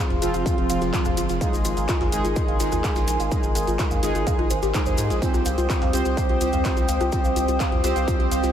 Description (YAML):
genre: melodic techno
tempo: 126 BPM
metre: 4/4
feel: straight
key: unclear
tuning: A4 = 440 Hz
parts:
  - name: dark analog pad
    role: sustained chords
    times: 0.0-8.5 s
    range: Ab4 to Eb6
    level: -29 LUFS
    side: left 1 dB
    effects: chorus, sidechain pumping
  - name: woody wave-folded pluck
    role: arpeggios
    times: 0.0-8.5 s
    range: F4 to F5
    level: -29 LUFS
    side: equal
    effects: chorus, sidechain pumping, diffuse ambient delay
  - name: analog synth brass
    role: stabs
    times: 0.0-8.5 s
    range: F3 to C5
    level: -26 LUFS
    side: right 3 dB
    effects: chorus, sidechain pumping, diffuse ambient delay
  - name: round analog bass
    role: bass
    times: 0.1-8.5 s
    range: F1 to Ab2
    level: -27 LUFS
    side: equal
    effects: sidechain pumping
  - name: dusty soul sampler-style drum kit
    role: drums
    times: 0.1-8.5 s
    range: hi-hat, snare drum, tambourine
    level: -42 LUFS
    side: right 1 dB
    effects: none
  - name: techno drum kit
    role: drums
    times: 0.1-8.5 s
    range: handclaps, hi-hat, rim click, toms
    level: -32 LUFS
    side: equal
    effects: overdrive
  - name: maracas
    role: percussion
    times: 0.2-8.5 s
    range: none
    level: -37 LUFS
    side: left 3 dB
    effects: none
  - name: electronic kick drum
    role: drums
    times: 0.5-8.2 s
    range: none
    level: -25 LUFS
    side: equal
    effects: distortion, overdrive
room: moderate huge ambient reverb, RT60 4.2 s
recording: dreamy mix soaked in reverb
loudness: -20 LUFS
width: side -9 dB against mid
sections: 0.0-8.5 A section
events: none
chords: 0.0 Fm; 1.4 Abadd9; 5.2 Cm